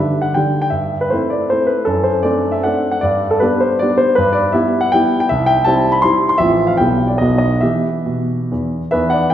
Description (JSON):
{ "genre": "classical, romantic triple-time dance for piano with dotted rhythms", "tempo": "130-173 BPM", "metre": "3/4", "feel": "rubato", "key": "G major, E minor from 4.2 s", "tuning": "A4 = 440 Hz", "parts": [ { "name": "warm grand piano", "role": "solo", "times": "0.0-9.3 s", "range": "A1 to C6", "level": "-13 LUFS", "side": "equal", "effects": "none" } ], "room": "wet recital hall reverb, RT60 1.6 s", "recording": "heard from further back in the room", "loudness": "-13 LUFS", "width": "side -10 dB against mid", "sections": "0.0-8.9 A section", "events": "none", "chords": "0.0 G5; 0.7 Am7/G; 1.9 D7/F#; 3.0 G; 4.2 Em/G; 5.3 C; 6.4 F/A; 6.8 Em/B; 7.2 B; 7.6 Em" }